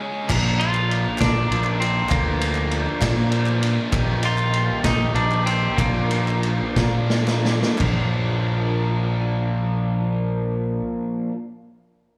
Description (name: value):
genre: indie rock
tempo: 56-66 BPM (dotted quarters)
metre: 6/8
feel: straight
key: Bb major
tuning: A4 = 441 Hz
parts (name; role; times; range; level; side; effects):
- raw garage guitar; riff; 0.0-11.3 s; Bb2 to Ab4; -31 LUFS; equal; overdrive, slapback echo
- raw garage guitar; riff; 0.3-11.3 s; F3 to G4; -32 LUFS; equal; overdrive, lush chorus, slapback echo
- picked electric bass; bass; 0.3-10.8 s; Bb1 to Bb2; -24 LUFS; equal; none
- vintage drum kit; drums; 0.3-8.0 s; crash cymbal, kick drum, ride cymbal, snare drum, toms; -27 LUFS; equal; none
- group handclap; percussion; 0.3-8.1 s; none; -38 LUFS; equal; none
- twangy electric guitar; melody; 0.6-7.0 s; Bb3 to F4; -27 LUFS; equal; spring reverb, slapback echo, digital delay
room: studio reverb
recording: live gig heard through the venue's PA, club reverb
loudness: -21 LUFS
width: mono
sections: 0.0-7.8 A section; 7.8-12.1 B section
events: slowing down 3.9-7.8; drum fill 6.8-7.8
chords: 0.3 Bb; 3.9 Eb/Bb; 5.8 Bb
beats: | 0.29 1.20 | 2.11 3.02 | 3.92 4.84 | 5.78 6.76 | 7.79 8.86 | 9.93 10.99